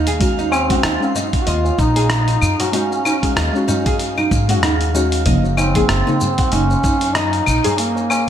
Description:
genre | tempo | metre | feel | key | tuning
organic downtempo | 95 BPM | 4/4 | swing 57% on 16ths | Eb dorian | A4 = 440 Hz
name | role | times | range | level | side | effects
deep mellow chord stab | accompaniment | 0.0-7.8 s | Db3 to F5 | -23 LUFS | left 1 dB | chorus, sidechain pumping, digital delay, shimmer reverb
oud | arpeggios | 0.0-7.7 s | Eb4 to Eb5 | -22 LUFS | right 1 dB | digital delay, shimmer reverb
upright bass | bass | 0.0-7.6 s | Gb1 to Ab2 | -19 LUFS | equal | none
drifting glass-harmonics texture | texture | 0.0-8.3 s | F5 | -30 LUFS | right 5 dB | chorus, built-in reverb, shimmer reverb
dusty soul sampler-style drum kit | drums | 0.1-8.2 s | claves, hi-hat, rim click, shaker | -22 LUFS | left 1 dB | none
electronic kick drum | drums | 0.2-7.0 s | none | -20 LUFS | equal | none
tabla | percussion | 0.4-8.2 s | none | -26 LUFS | left 2 dB | none
mellow duduk | melody | 0.5-8.3 s | Bb3 to Gb4 | -22 LUFS | equal | ping-pong delay, shimmer reverb
room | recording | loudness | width
moderate plate reverb, RT60 3.1 s | bright 1980s-style digital production | -14 LUFS | side -9 dB against mid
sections
0.0-8.3 A section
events
none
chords
0.0 Ebmadd9; 5.3 Gb

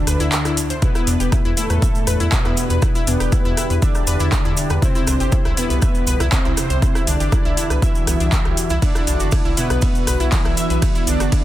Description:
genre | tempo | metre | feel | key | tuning
melodic techno | 120 BPM | 4/4 | straight | E minor | A4 = 442 Hz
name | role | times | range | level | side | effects
analog synth brass | melody | 0.0-11.4 s | D2 to E4 | -24 LUFS | left 1 dB | chorus, cassette tape, sidechain pumping, dub echo
soft supersaw | second line | 0.0-11.4 s | D4 to E5 | -29 LUFS | right 2 dB | sidechain pumping, dub echo
analog drone | drone | 0.0-11.4 s | E2 to D3 | -34 LUFS | left 1 dB | none
analog pluck | arpeggios | 0.1-11.4 s | B3 to E5 | -26 LUFS | left 1 dB | chorus, sidechain pumping, dub echo
round analog bass | bass | 0.1-11.3 s | E1 to E2 | -20 LUFS | equal | tube saturation, sidechain pumping
deep house drum kit | drums | 0.1-11.4 s | handclaps, hi-hat, ride cymbal, rim click | -26 LUFS | equal | overdrive
cabasa | percussion | 0.1-11.4 s | none | -30 LUFS | right 3 dB | none
deep dark ambient pad | sustained chords | 2.1-11.4 s | B3 to G4 | -30 LUFS | right 2 dB | chorus, built-in reverb, sidechain pumping
electronic kick drum | drums | 0.8-11.4 s | none | -18 LUFS | equal | overdrive
room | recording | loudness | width
little or no reverb | dense, heavily limited modern master | -15 LUFS | side -14 dB against mid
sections
0.0-11.4 A section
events
none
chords
0.0 N.C.; 0.8 Em7; 4.8 C; 8.8 Bm

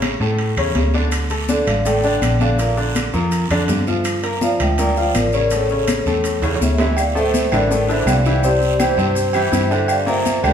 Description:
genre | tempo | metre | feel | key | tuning
latin, salsa | 164 BPM | 4/4 | straight | D minor | A4 = 436 Hz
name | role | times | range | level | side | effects
bright upright piano | accompaniment | 0.0-10.5 s | A2 to Bb5 | -21 LUFS | left 1 dB | none
vintage muted fingered electric bass | bass | 0.0-10.5 s | A1 to A2 | -20 LUFS | equal | none
claves | percussion | 0.0-10.5 s | none | -35 LUFS | left 4 dB | none
congas | percussion | 0.0-10.5 s | none | -25 LUFS | left 2 dB | none
guiro | percussion | 0.0-10.5 s | none | -31 LUFS | right 5 dB | none
timbales and agogo bells | percussion | 0.0-10.5 s | none | -26 LUFS | right 3 dB | none
maracas | percussion | 1.1-10.5 s | none | -34 LUFS | left 4 dB | none
vibraphone with soft mallets | melody | 1.5-10.5 s | G4 to G5 | -20 LUFS | left 1 dB | none
room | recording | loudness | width
wet large studio reverb, RT60 1.3 s | band playing live in one room | -15 LUFS | side -8 dB against mid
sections
0.0-7.0 A section; 7.0-10.5 B section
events
drum fill 6.4-7.0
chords
0.0 A; 1.1 D5; 2.6 Bb; 4.1 Gm7; 5.5 A; 7.0 Dmadd9; 8.4 C; 9.9 Gm

